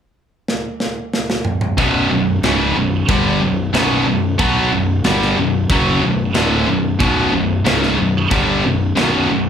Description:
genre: heavy metal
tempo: 92 BPM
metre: 4/4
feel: straight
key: B minor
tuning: A4 = 440 Hz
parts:
  - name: tight metal drum kit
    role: drums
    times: 0.5-9.1 s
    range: crash cymbal, kick drum, snare drum, toms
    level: -21 LUFS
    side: right 1 dB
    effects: none
  - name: high-gain distorted guitar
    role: riff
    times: 1.8-9.5 s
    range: B1 to B3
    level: -15 LUFS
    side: equal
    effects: distortion
  - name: fuzz picked electric bass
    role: bass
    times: 1.8-9.5 s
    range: B0 to B1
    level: -22 LUFS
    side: equal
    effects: overdrive
room: moderate large studio reverb, RT60 0.8 s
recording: band playing live in one room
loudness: -14 LUFS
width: side -8 dB against mid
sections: 0.0-1.8 A section; 1.8-9.5 B section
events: drum fill 0.5-1.8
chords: 0.0 N.C.; 1.8 Bm

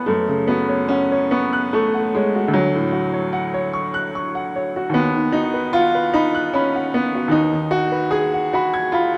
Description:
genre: classical, romantic nocturne for solo piano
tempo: 75 BPM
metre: 3/4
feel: rubato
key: unclear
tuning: A4 = 440 Hz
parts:
  - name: bright upright piano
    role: solo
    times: 0.0-9.2 s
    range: D2 to G#6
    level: -20 LUFS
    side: equal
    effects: none
room: wet recital hall reverb, RT60 1.7 s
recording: dark, warm production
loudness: -20 LUFS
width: mono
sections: 0.0-9.2 A section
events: none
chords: 0.1 F#5; 2.5 Dmaj7; 5.0 B/D#; 7.3 G#m7/D#

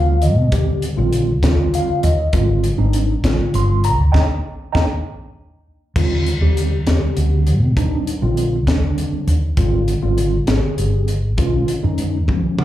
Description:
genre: electric jazz fusion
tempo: 66 BPM (dotted quarters)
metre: 6/8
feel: straight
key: Eb major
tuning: A4 = 440 Hz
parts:
  - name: mellow tine electric piano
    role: accompaniment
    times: 0.0-12.6 s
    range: D3 to C6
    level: -20 LUFS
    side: equal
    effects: fast stereo tremolo, plate reverb, slapback echo
  - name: woody fretless electric bass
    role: bass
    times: 0.0-12.5 s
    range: G1 to C3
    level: -17 LUFS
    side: equal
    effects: none
  - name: crisp fusion drum kit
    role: drums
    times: 0.2-12.6 s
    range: crash cymbal, hi-hat, kick drum, snare drum, toms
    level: -22 LUFS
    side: equal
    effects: none
room: light reverb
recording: live gig heard through the venue's PA, club reverb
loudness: -15 LUFS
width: side -13 dB against mid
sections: 0.0-6.0 A section; 6.0-12.6 B section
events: band accent 4.1-6.0; tine electric piano fill 5.1-6.0, 12.3-12.6; drum fill 12.3-12.6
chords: 0.0 Ebmaj9; 2.3 Abmaj7; 4.1 Ebmaj7; 6.0 Ebmaj9; 9.6 Abmaj7; 11.4 Badd9

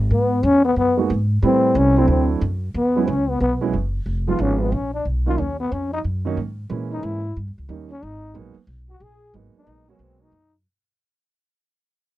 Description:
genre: jazz, small-group swing and bop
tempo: 182 BPM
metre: 4/4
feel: swing 63% on 8ths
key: G# minor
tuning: A4 = 440 Hz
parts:
  - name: upright bass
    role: bass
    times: 0.0-10.6 s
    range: F1 to A#2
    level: -23 LUFS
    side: equal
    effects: none
  - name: growling trombone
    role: melody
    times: 0.1-10.5 s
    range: B3 to G#4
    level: -21 LUFS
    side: left 3 dB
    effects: none
  - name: mellow trombone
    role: second line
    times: 0.1-10.5 s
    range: B3 to G#4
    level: -25 LUFS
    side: right 2 dB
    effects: none
  - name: warm grand piano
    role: accompaniment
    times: 1.0-10.3 s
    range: D#3 to B4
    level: -23 LUFS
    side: right 6 dB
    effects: none
room: light reverb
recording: dry, close 1970s-style studio recording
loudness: -18 LUFS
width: side -15 dB against mid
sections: 0.1-10.7 A section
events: fade-out 0.1-10.7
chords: 0.1 G#m7; 1.4 Am7; 2.1 D9; 2.7 E69; 4.1 Fm7b5; 4.7 Bmaj9#11/A#; 5.4 D#m7; 6.7 A#m7b5; 7.4 D#7; 8.0 G#m7

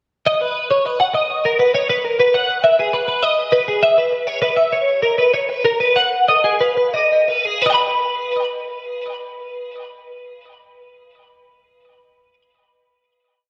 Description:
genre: rock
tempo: 57-68 BPM (dotted quarters)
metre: 6/8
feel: straight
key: B major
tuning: A4 = 439 Hz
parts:
  - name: twelve-string electric guitar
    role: solo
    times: 0.3-12.4 s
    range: G#4 to B5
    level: -18 LUFS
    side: equal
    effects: ensemble chorus, tape echo
room: wet lush hall reverb, RT60 1.5 s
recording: dreamy mix soaked in reverb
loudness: -17 LUFS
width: mono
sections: 0.3-7.6 A section; 7.6-11.8 final chord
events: slowing down 3.8-7.6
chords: 0.3 B; 2.0 G#m7; 3.8 C#m7; 5.7 B; 7.6 N.C.

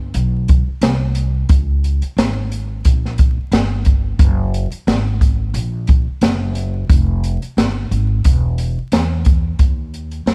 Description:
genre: hip hop, jazz-hop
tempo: 89 BPM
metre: 4/4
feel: swing 57% on 16ths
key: unclear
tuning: A4 = 440 Hz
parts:
  - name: upright bass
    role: bass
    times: 0.0-10.3 s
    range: Fb1 to Gb2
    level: -21 LUFS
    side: equal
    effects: none
  - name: open jazz drum kit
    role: drums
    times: 0.1-10.3 s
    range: hi-hat, kick drum, snare drum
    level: -17 LUFS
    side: equal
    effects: none
room: little or no reverb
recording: vinyl crackle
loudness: -17 LUFS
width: mono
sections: 0.0-9.6 A section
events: none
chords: none

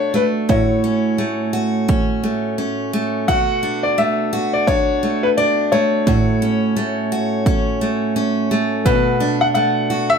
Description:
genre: acoustic pop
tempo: 86 BPM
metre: 4/4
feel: swing 60% on 16ths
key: A major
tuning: A4 = 440 Hz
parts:
  - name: clear upright piano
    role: melody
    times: 0.0-10.2 s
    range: B4 to F#5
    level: -19 LUFS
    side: left 3 dB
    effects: none
  - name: picked steel-string acoustic guitar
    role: accompaniment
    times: 0.0-10.2 s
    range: A2 to F#4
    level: -18 LUFS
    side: right 2 dB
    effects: none
  - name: electronic kick drum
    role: drums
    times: 0.5-9.1 s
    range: none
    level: -20 LUFS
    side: right 2 dB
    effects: overdrive
room: moderate studio reverb, RT60 0.5 s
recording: none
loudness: -16 LUFS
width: side -6 dB against mid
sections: 0.0-10.2 A section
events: none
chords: 0.5 A6; 3.3 Bm7; 6.1 A6; 8.9 Bm7

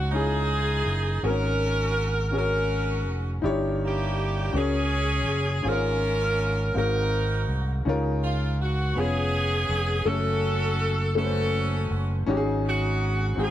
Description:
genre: slow gospel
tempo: 54 BPM (dotted quarters)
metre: 6/8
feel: straight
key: Db major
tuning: A4 = 442 Hz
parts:
  - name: bright saxophone section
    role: melody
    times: 0.0-13.5 s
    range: Bb3 to Bb4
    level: -27 LUFS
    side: right 1 dB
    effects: none
  - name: warm upright piano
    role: accompaniment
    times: 0.0-13.5 s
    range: G2 to F5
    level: -29 LUFS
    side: left 3 dB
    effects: none
  - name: fingered electric bass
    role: bass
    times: 0.0-13.5 s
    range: F1 to Db2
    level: -26 LUFS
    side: right 1 dB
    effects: none
room: light reverb, studio reverb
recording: none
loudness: -23 LUFS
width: side -12 dB against mid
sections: 0.0-13.5 A section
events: none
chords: 0.0 Db69; 1.2 Ab9sus4; 3.4 Eb7b9/G; 4.5 Gb/Db; 5.6 Db/Ab; 6.8 Ab13; 7.9 Db69; 9.0 Db7/F; 10.1 Gbm; 12.3 Ab7sus4

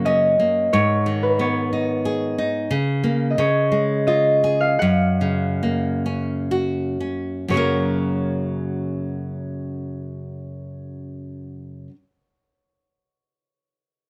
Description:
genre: children's music, lullaby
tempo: 57-92 BPM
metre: 3/4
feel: rubato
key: F# major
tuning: A4 = 441 Hz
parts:
  - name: concert harp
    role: melody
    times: 0.0-11.9 s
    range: B4 to F#5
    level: -23 LUFS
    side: equal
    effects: none
  - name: nylon-string guitar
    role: accompaniment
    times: 0.0-12.0 s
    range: F#2 to A#4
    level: -24 LUFS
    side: equal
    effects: none
room: little or no reverb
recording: close, detailed microphones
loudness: -21 LUFS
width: mono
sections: 0.0-7.5 A section; 7.5-13.7 B section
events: slowing down 2.7-7.5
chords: 0.0 F#; 0.7 G#m; 2.7 A#m/C#; 3.4 C#; 4.8 F#

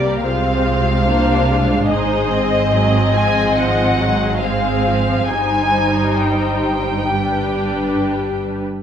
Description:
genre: classical, slow romantic movement for string orchestra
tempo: 66-74 BPM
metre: 4/4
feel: rubato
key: unclear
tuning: A4 = 440 Hz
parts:
  - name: muted studio violin section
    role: melody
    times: 0.0-8.4 s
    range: D5 to Ab5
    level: -20 LUFS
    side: left 2 dB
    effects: none
  - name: muted studio violin section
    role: second line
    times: 0.0-8.6 s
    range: Eb4 to Eb5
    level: -22 LUFS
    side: left 3 dB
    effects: none
  - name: muted studio viola section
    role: accompaniment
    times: 0.0-8.6 s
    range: F3 to Eb4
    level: -20 LUFS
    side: right 1 dB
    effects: none
  - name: muted symphonic cello section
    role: bass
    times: 0.0-8.6 s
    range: G2 to C3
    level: -22 LUFS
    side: right 2 dB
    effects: none
  - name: muted symphonic double bass section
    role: bass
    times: 0.0-8.6 s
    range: G1 to C2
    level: -24 LUFS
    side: right 2 dB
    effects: none
room: moderate recital hall reverb, RT60 1.6 s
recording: nothing above 10.7 kHz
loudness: -14 LUFS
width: side -8 dB against mid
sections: 0.0-8.8 A section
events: none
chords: 0.3 Fm/C; 1.9 Ab7; 5.3 Cm/G; 7.1 G

